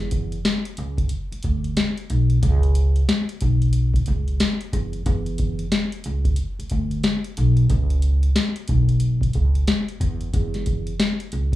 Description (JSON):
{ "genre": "hip hop, boom-bap hip-hop", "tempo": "91 BPM", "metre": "4/4", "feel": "swing 62% on 16ths", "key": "unclear", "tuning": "A4 = 440 Hz", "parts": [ { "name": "upright bass", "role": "bass", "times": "0.0-11.6 s", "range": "B1 to E2", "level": "-20 LUFS", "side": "equal", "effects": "none" }, { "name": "booming analog drum machine", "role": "drums", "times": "0.0-11.6 s", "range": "hi-hat, kick drum, snare drum", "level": "-22 LUFS", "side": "left 1 dB", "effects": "none" } ], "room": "little or no reverb", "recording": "rough home demo mix, studio reverb", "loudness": "-19 LUFS", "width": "side -15 dB against mid", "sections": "0.0-11.6 A section", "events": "none", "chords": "none", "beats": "0.44 1.10 1.76 | 2.42 3.08 3.74 4.40 | 5.06 5.72 6.38 7.04 | 7.70 8.36 9.02 9.67 | 10.33 10.99" }